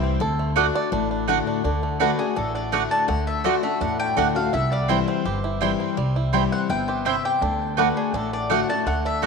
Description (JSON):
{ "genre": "bluegrass", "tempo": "166 BPM", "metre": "4/4", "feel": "straight", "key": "D mixolydian", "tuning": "A4 = 440 Hz", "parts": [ { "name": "bluegrass banjo", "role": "melody", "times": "0.0-9.3 s", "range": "G3 to D5", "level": "-28 LUFS", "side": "right 4 dB", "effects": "none" }, { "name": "picked steel-string acoustic guitar", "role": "accompaniment", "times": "0.0-9.3 s", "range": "G2 to F#4", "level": "-26 LUFS", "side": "left 11 dB", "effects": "none" }, { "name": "upright bass", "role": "bass", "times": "0.0-9.3 s", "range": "G1 to E2", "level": "-27 LUFS", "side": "right 1 dB", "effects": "none" }, { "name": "mandolin", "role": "stabs", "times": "0.6-9.3 s", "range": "A3 to G5", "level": "-26 LUFS", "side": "right 12 dB", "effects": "none" }, { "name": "mandolin", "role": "melody", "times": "2.0-9.3 s", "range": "G#4 to A5", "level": "-27 LUFS", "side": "left 2 dB", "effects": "tape echo" } ], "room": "moderate plate reverb, RT60 3.4 s", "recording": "1960s-style stereo with parts hard left and right", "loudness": "-20 LUFS", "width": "side -5 dB against mid", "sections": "0.0-1.6 A section; 1.6-9.3 B section", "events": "five-string banjo solo 0.0-1.6", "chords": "0.2 D; 4.5 C; 7.4 D" }